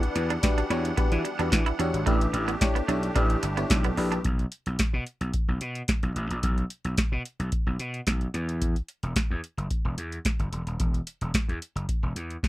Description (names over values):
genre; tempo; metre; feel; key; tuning
early-eighties boogie funk; 110 BPM; 4/4; straight; unclear; A4 = 441 Hz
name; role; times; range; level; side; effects
FM electric piano; accompaniment; 0.0-4.2 s; D4 to C#5; -30 LUFS; left 2 dB; chorus
musette accordion; sustained chords; 0.0-4.2 s; E3 to F#5; -33 LUFS; right 1 dB; none
booming analog drum machine; drums; 0.0-12.5 s; hi-hat, kick drum, snare drum; -26 LUFS; equal; none
clean electric guitar; riff; 0.2-4.2 s; A3 to E4; -32 LUFS; right 7 dB; lush chorus
gritty slap bass; bass; 0.2-12.4 s; D#1 to E3; -29 LUFS; equal; overdrive
room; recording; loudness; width
little or no reverb; none; -25 LUFS; side -16 dB against mid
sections
0.0-4.2 A section; 4.2-12.5 B section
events
none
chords
0.0 Em9; 2.1 A9sus4; 4.2 N.C.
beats
0.43 0.98 1.52 | 2.07 2.61 3.16 3.70 | 4.25 4.79 5.34 5.88 | 6.43 6.98 7.52 8.07 | 8.61 9.16 9.70 10.25 | 10.79 11.34 11.88 12.43